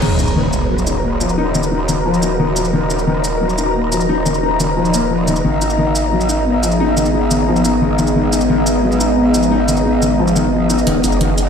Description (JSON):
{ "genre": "dark technical drum and bass", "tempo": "177 BPM", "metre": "4/4", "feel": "straight", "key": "Eb minor", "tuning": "A4 = 440 Hz", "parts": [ { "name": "deep dark ambient pad", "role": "sustained chords", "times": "0.0-11.5 s", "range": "Ab3 to Gb5", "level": "-20 LUFS", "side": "left 1 dB", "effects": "chorus, built-in reverb" }, { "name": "felt-muted upright piano", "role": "arpeggios", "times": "0.0-11.3 s", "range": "Eb3 to Eb4", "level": "-18 LUFS", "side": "left 3 dB", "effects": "low-pass filter, dub echo" }, { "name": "growl bass", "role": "bass", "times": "0.0-11.5 s", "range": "Eb1 to Ab1", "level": "-19 LUFS", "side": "right 1 dB", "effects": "chorus, overdrive" }, { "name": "drum and bass drum kit", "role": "drums", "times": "0.0-11.4 s", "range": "crash cymbal, hi-hat, shaker", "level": "-25 LUFS", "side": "right 1 dB", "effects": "overdrive" }, { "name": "impact", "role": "sound effects", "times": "0.0-1.4 s", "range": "none", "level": "-21 LUFS", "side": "right 1 dB", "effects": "none" }, { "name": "ethereal airy pad", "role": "texture", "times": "0.0-11.5 s", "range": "Cb4 to Bb5", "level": "-20 LUFS", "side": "equal", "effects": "ensemble chorus, built-in reverb" } ], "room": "moderate plate reverb, RT60 2.5 s", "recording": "played on a big sound system in a bare room, stone room reverb", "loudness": "-13 LUFS", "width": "side -7 dB against mid", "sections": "0.0-10.9 A section", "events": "impact 0.0-1.4; filter sweep on ambient pad 0.0-10.9", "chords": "0.0 Ebm; 5.4 Abmadd9; 10.9 Ebm" }